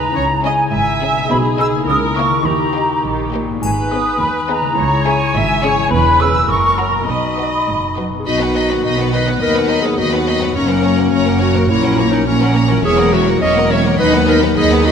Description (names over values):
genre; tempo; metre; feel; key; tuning
cinematic, playful, whimsical film cue; 104 BPM; 2/4; straight; B major from 5.9 s; A4 = 440 Hz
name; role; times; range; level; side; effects
glockenspiel with rubber mallets; melody; 0.0-7.9 s; G#5 to E6; -23 LUFS; left 3 dB; none
rich studio violin section; melody; 0.0-14.9 s; C#5 to B5; -27 LUFS; left 2 dB; none
rich studio violin section; second line; 0.0-14.9 s; A#3 to D#5; -22 LUFS; left 3 dB; none
small flute group; second line; 0.0-8.0 s; G#5 to E6; -18 LUFS; right 1 dB; none
rich studio viola section; accompaniment; 0.0-14.9 s; A#3 to E5; -22 LUFS; right 2 dB; none
concert harp; arpeggios; 0.0-14.9 s; E2 to D#5; -22 LUFS; left 6 dB; none
rich studio cello section; bass; 0.0-14.9 s; C#2 to D#3; -22 LUFS; right 3 dB; none
rich studio double bass section; bass; 0.0-14.9 s; E1 to D#2; -22 LUFS; right 4 dB; none
triangle; percussion; 3.6-4.7 s; none; -35 LUFS; left 3 dB; none
warm clarinet; second line; 8.2-14.9 s; C#4 to D#5; -17 LUFS; left 1 dB; none
dark French horn section; sustained chords; 8.3-14.9 s; D#3 to C#4; -23 LUFS; left 6 dB; none
room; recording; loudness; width
moderate scoring stage reverb, RT60 2.0 s; none; -13 LUFS; side -7 dB against mid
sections
0.0-8.3 A section; 8.3-14.9 B section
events
none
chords
0.2 C#m; 1.3 G#m/B; 1.9 A#dim/C#; 2.5 D#; 3.6 G#m; 4.8 C#m; 5.9 C#m7/E; 6.5 F#; 7.1 B; 9.4 B/D#; 10.6 F#; 11.7 F#/A#; 12.8 F#7/E; 14.0 B/D#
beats
| 0.16 0.73 | 1.30 1.88 | 2.46 3.04 | 3.62 4.20 | 4.78 5.35 | 5.92 6.49 | 7.08 7.68 | 8.27 8.84 | 9.42 9.99 | 10.56 11.13 | 11.70 12.27 | 12.84 13.42 | 13.99 14.57